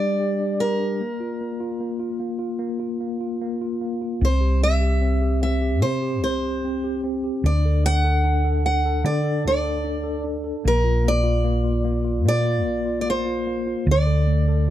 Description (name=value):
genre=acoustic folk-pop ballad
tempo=75 BPM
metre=4/4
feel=straight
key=unclear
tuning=A4 = 444 Hz
part: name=picked steel-string acoustic guitar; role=melody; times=0.0-14.7 s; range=Bb4 to F#5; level=-25 LUFS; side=right 1 dB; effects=plate reverb
part: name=tine electric piano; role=accompaniment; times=0.0-14.7 s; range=D3 to A4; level=-25 LUFS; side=equal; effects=fast stereo tremolo
part: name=hollow-body short-scale fingered electric bass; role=bass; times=4.2-14.7 s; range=Bb1 to D3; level=-21 LUFS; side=equal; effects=none
room=light reverb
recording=dark, warm production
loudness=-20 LUFS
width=side -12 dB against mid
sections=0.0-14.7 A section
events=none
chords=0.0 Gm; 1.0 Bb5; 4.2 C; 7.4 D; 10.7 Bb; 13.9 D5